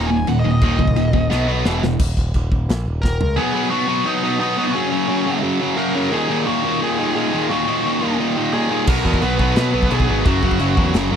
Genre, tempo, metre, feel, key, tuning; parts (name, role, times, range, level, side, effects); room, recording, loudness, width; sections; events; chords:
heavy metal; 174 BPM; 4/4; straight; Eb phrygian; A4 = 441 Hz
nasal lead guitar with a parked wah; melody; 0.0-10.9 s; B3 to Ab5; -24 LUFS; left 2 dB; overdrive, tape echo
high-gain distorted guitar; riff; 0.0-11.2 s; Eb2 to B3; -18 LUFS; equal; distortion
growling picked electric bass; bass; 0.0-3.4, 8.9-11.2 s; Eb1 to B2; -20 LUFS; equal; overdrive
modern studio drum kit; drums; 0.3-3.3, 8.9-11.0 s; china cymbal, crash cymbal, kick drum, snare drum, toms; -20 LUFS; equal
little or no reverb; dry, close 1970s-style studio recording; -16 LUFS; side -8 dB against mid
0.0-2.0 A section; 2.0-3.4 B section; 3.4-11.2 C section
lead electric guitar solo 0.0-2.0; drum fill 1.3-2.0, 3.0-3.4
0.0 Eb5; 1.3 B5; 1.6 E5; 2.0 Eb5; 3.4 B; 4.8 Gb; 6.1 Ebm; 8.9 B5; 10.3 Gb5